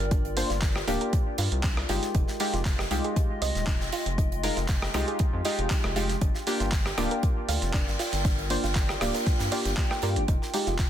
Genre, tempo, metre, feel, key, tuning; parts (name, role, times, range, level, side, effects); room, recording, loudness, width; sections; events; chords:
deep house; 118 BPM; 4/4; straight; A4 = 440 Hz
deep mellow chord stab; stabs; 0.0-10.7 s; Ab3 to C5; -31 LUFS; equal; chorus, sidechain pumping, dub echo
rubbery square bass; bass; 0.0-10.9 s; D1 to G2; -30 LUFS; equal; sidechain pumping
warbly tape-like pad; texture; 0.0-10.9 s; Ab3 to G5; -36 LUFS; left 1 dB; chorus, built-in reverb, sidechain pumping
soft round pluck; arpeggios; 0.1-10.7 s; D4 to G5; -38 LUFS; right 4 dB; chorus, vintage 12-bit sampler grit, sidechain pumping, dub echo
dusty soul sampler-style drum kit; drums; 0.1-10.9 s; handclaps, hi-hat, rim click; -33 LUFS; right 2 dB; overdrive, studio ambience
electronic kick drum; drums; 0.1-10.9 s; -26 LUFS; equal; studio ambience
gated 80s drum kit; drums; 0.1-10.9 s; hi-hat, snare drum; -36 LUFS; right 1 dB; high-pass filter on hats, studio ambience, high-pass filter on snare, high-pass filter on room
little or no reverb; dense, heavily limited modern master; -24 LUFS; side -10 dB against mid
0.0-10.9 A section
0.0 Gm7; 2.1 Fm9; 6.2 Gm7; 10.3 Fm9